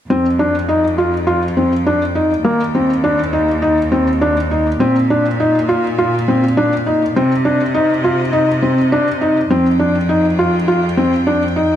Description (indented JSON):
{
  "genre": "electronica",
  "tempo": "102 BPM",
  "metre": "4/4",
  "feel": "straight",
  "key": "F dorian",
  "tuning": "A4 = 440 Hz",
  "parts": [
    { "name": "clear string quartet", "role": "sustained chords", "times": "0.1-11.8 s", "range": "D3 to G5", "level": "-32 LUFS", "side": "equal", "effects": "none" },
    { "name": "felt-muted upright piano", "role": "riff", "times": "0.1-11.7 s", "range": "Bb3 to F4", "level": "-14 LUFS", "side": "left 1 dB", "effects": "ping-pong delay" },
    { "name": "clear chamber cello section", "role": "bass", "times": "0.1-11.8 s", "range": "Eb2 to C3", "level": "-20 LUFS", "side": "right 1 dB", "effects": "tube saturation" }
  ],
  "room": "moderate echo chamber reverb, RT60 1.9 s, small room reverb",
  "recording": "none",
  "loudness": "-13 LUFS",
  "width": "side -10 dB against mid",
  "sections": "0.1-11.8 A section",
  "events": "fade-in on string quartet 0.1-11.8",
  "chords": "0.1 Fmadd9; 2.5 Eb; 4.8 Bb; 7.2 Cmadd9; 9.5 Fmadd9"
}